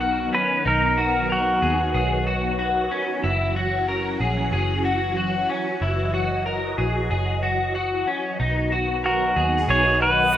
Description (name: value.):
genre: dream pop.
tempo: 93 BPM.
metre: 4/4.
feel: straight.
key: B major.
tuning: A4 = 441 Hz.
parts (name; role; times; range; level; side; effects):
phased string machine; sustained chords; 0.0-10.4 s; D#3 to D#5; -27 LUFS; right 1 dB; ensemble chorus, phaser.
electric guitar at the edge of break-up; arpeggios; 0.0-10.4 s; C#4 to A#4; -24 LUFS; left 3 dB; ensemble chorus, tape echo.
vintage muted picked electric bass; bass; 0.0-10.4 s; F#1 to D#2; -26 LUFS; right 1 dB; none.
pedal steel guitar; melody; 0.3-2.6, 9.1-10.4 s; F#4 to C#5; -21 LUFS; equal; tape echo.
backwards swelling texture; texture; 9.6-10.4 s; D#5; -34 LUFS; right 5 dB; built-in reverb.
room: moderate small room reverb, RT60 0.5 s.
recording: rough home demo mix.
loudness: -20 LUFS.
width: side -11 dB against mid.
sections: 0.0-10.4 A section.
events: none.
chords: 0.0 Bmaj7; 3.2 F#7; 8.4 Bmaj7.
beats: 0.01 | 0.66 1.30 1.95 2.59 | 3.24 3.88 4.53 5.17 | 5.82 6.46 7.11 7.75 | 8.40 9.04 9.69 10.33.